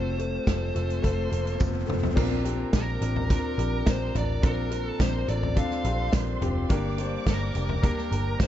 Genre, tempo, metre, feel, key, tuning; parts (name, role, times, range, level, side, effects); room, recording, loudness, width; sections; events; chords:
piano-driven pop; 106 BPM; 4/4; straight; Bb major; A4 = 440 Hz
smooth overdriven lead guitar; melody; 0.0-8.5 s; Bb4 to F5; -34 LUFS; right 1 dB; tape echo
warm concert grand piano; accompaniment; 0.0-8.5 s; G2 to C5; -31 LUFS; left 3 dB
vintage muted picked electric bass; bass; 0.0-8.5 s; F1 to Bb1; -29 LUFS; equal
riser; sound effects; 0.0-2.2 s; -36 LUFS; right 3 dB
natural country drum kit; drums; 0.2-8.5 s; crash cymbal, hi-hat, kick drum, snare drum, toms; -27 LUFS; equal
tambourine; percussion; 0.5-8.5 s; -49 LUFS; right 6 dB
warm studio violin section; second line; 2.2-8.5 s; Bb4 to D6; -38 LUFS; right 2 dB
light reverb, small room ambience; dark, warm production, nothing above 7.8 kHz; -24 LUFS; side -12 dB against mid
0.0-2.2 A section; 2.2-8.5 B section
riser 0.0-2.2; drum fill 1.6-2.2
0.0 F; 2.2 Bbadd9; 6.7 Gm